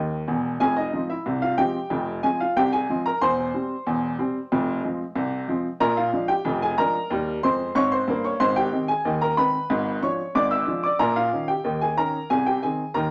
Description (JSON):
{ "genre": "ragtime piano", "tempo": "92 BPM", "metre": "2/4", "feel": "straight", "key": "Ab major", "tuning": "A4 = 440 Hz", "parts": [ { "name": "clear upright piano", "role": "solo", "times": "0.0-13.1 s", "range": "Fb1 to Fb6", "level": "-24 LUFS", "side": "equal", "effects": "none" } ], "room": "wet studio reverb, RT60 0.5 s", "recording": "none", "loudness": "-24 LUFS", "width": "mono", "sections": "0.0-13.1 A section", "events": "none", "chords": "0.0 N.C.; 0.6 Fm; 3.2 C/E; 4.5 Fm; 5.8 Bb7; 7.1 Eb7; 8.4 Ab; 9.7 Abdim7; 11.0 Eb7/Bb; 12.3 Ab/C", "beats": "| 0.61 1.26 | 1.91 2.56 | 3.21 3.86 | 4.51 5.16 | 5.81 6.45 | 7.10 7.75 | 8.40 9.05 | 9.70 10.35 | 11.00 11.65 | 12.30 12.95" }